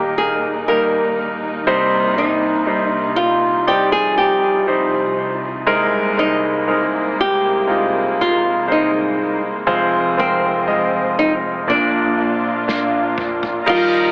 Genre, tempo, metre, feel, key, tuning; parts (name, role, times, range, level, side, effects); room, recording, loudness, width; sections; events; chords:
pop ballad; 60 BPM; 4/4; straight; A4 = 439 Hz
flamenco guitar; melody; 0.0-14.1 s; F3 to Bb4; -21 LUFS; equal; dub echo
bright concert grand piano; accompaniment; 0.0-14.1 s; F1 to F5; -21 LUFS; equal; dub echo
dark studio string section; sustained chords; 0.0-14.1 s; C2 to Bb5; -27 LUFS; equal
natural country drum kit; drums; 12.7-13.9 s; crash cymbal, kick drum, snare drum, toms; -29 LUFS; equal; dub echo
warm sub bass; bass; 13.7-14.1 s; Eb1; -41 LUFS; equal
egg shaker; percussion; 13.7-14.1 s; -55 LUFS; equal
wet spring reverb, RT60 2.3 s; echo-heavy mix, AM radio sound; -17 LUFS; mono
0.0-13.7 A section
drum fill 12.7-13.7
0.0 Eb; 1.7 Cm; 5.7 Abadd9/C; 9.7 Fm; 11.7 Bb